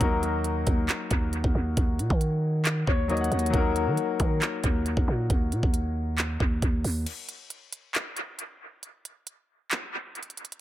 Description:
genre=hip hop, trap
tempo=136 BPM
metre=4/4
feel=half-time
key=Eb minor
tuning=A4 = 440 Hz
part: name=clear concert grand piano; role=accompaniment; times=0.0-7.1 s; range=Gb3 to Gb5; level=-30 LUFS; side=left 4 dB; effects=low-pass filter, dub echo
part: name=growling 808-style bass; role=bass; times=0.0-7.1 s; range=Eb2 to Eb3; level=-27 LUFS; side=right 1 dB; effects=none
part: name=trap drum kit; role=drums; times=0.0-10.6 s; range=crash cymbal, handclaps, hi-hat, kick drum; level=-28 LUFS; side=right 1 dB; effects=dub echo
room=light reverb, digital ambience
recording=echo-heavy mix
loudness=-24 LUFS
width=side -14 dB against mid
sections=0.0-7.1 A section; 7.1-10.6 B section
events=break 7.1-10.6; filter sweep on grand piano 7.1-10.6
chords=0.0 Ebm; 7.1 N.C.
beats=| 0.01 0.45 0.89 1.33 | 1.77 2.21 2.65 3.10 | 3.54 3.98 4.42 4.86 | 5.30 5.74 6.18 6.62 | 7.07 7.51 7.95 8.39 | 8.83 9.27 9.71 10.15

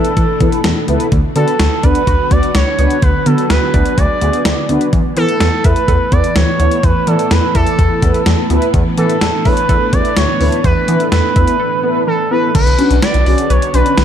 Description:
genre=synth-pop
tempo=126 BPM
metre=4/4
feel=straight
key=unclear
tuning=A4 = 442 Hz
part: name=expressive portamento lead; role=melody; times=0.0-14.0 s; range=A4 to D5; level=-17 LUFS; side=right 1 dB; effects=chorus, ping-pong delay
part: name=mellow synth brass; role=accompaniment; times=0.0-13.9 s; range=B3 to D5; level=-19 LUFS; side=equal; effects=chorus
part: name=string machine, full ensemble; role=sustained chords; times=0.0-14.0 s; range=A2 to G#4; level=-21 LUFS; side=equal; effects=ensemble chorus
part: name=analog pluck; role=arpeggios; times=0.0-14.0 s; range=D3 to E5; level=-24 LUFS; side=right 2 dB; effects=chorus, ping-pong delay
part: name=gated 80s digital drum machine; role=drums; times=0.0-14.0 s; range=crash cymbal, hi-hat, kick drum, snare drum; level=-16 LUFS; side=equal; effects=gated reverb, gated reverb snare, overdrive
part: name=smooth synth bass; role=bass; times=0.2-14.0 s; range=B1 to E3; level=-15 LUFS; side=equal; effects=none
room=light reverb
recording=dark, warm production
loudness=-11 LUFS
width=side -9 dB against mid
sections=0.0-12.5 A section; 12.5-14.0 B section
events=break 11.6-12.5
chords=0.0 Esus4; 1.1 Bm; 4.9 Esus4; 12.5 Bmadd9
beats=0.17 0.64 | 1.12 1.60 2.07 2.55 | 3.02 3.50 3.98 4.45 | 4.93 5.41 5.88 6.36 | 6.83 7.31 7.79 8.26 | 8.74 9.21 9.69 10.17 | 10.64 11.12 11.60 12.07 | 12.55 13.03 13.50 13.98

